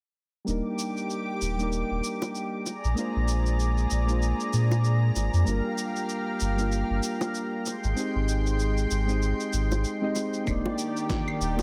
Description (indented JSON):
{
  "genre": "sunset chillout",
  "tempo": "96 BPM",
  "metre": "4/4",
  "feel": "swing 58% on 16ths",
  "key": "Eb major",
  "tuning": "A4 = 439 Hz",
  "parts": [
    { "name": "soft electric-piano-like synth keys", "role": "accompaniment", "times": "0.4-11.6 s", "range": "G3 to Eb5", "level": "-33 LUFS", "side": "equal", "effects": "chorus, digital delay, shimmer reverb" },
    { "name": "lush unison pad", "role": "sustained chords", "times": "0.5-11.6 s", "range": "Eb3 to D6", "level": "-35 LUFS", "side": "equal", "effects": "chorus, shimmer reverb" },
    { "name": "warm sub bass", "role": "bass", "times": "0.5-11.6 s", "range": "Eb1 to Bb2", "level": "-28 LUFS", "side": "equal", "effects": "tube saturation" },
    { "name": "electronic cabasa, claves and snare drum", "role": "drums", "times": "0.5-11.6 s", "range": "none", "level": "-39 LUFS", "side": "equal", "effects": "overdrive" },
    { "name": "bongos", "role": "percussion", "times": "2.2-11.6 s", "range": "none", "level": "-36 LUFS", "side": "equal", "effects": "none" },
    { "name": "electronic kick drum", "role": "drums", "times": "10.5-11.2 s", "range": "none", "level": "-35 LUFS", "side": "equal", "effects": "overdrive" }
  ],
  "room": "light reverb",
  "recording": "none",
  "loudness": "-27 LUFS",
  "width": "mono",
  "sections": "0.5-10.5 A section; 10.5-11.6 B section",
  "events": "filter sweep on sub bass 0.5-10.5",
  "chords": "0.5 Ebmaj7; 2.7 Bb7; 5.5 Gm7; 7.7 Abmaj7; 10.5 Ebmaj7",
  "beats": "| 0.48 1.10 1.73 2.35 | 2.98 3.60 4.23 4.85 | 5.48 6.10 6.73 7.35 | 7.98 8.60 9.23 9.85 | 10.48 11.10"
}